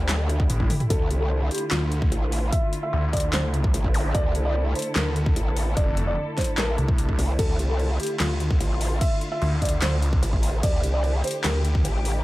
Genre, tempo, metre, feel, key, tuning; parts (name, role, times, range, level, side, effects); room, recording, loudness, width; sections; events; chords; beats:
heavy wobble dubstep; 148 BPM; 4/4; half-time; D minor; A4 = 445 Hz
dark studio string section; sustained chords; 0.0-12.2 s; D3 to A4; -32 LUFS; equal; sidechain pumping, low-pass filter
growl bass; bass; 0.0-12.2 s; A1 to D2; -24 LUFS; equal; chorus, overdrive
dubstep drum kit; drums; 0.1-12.1 s; crash cymbal, handclaps, hi-hat, snare drum, toms; -30 LUFS; equal
electronic kick drum; drums; 0.4-11.8 s; -24 LUFS; equal
snarling distorted saw bass; bass; 0.5-11.8 s; F1 to D2; -24 LUFS; equal; distortion, overdrive
felt-muted upright piano; melody; 0.9-11.5 s; F4 to E5; -30 LUFS; equal; dub echo
zap; sound effects; 3.9-4.0 s; -34 LUFS; equal
little or no reverb; -21 LUFS; side -18 dB against mid
0.0-12.2 A section
drum fill 0.6-0.9
0.0 Dmadd9
0.09 0.50 | 0.90 1.31 1.71 2.12 | 2.52 2.93 3.33 3.74 | 4.15 4.55 4.96 5.36 | 5.77 6.17 6.58 6.98 | 7.39 7.79 8.20 8.61 | 9.01 9.42 9.82 10.23 | 10.63 11.04 11.44 11.85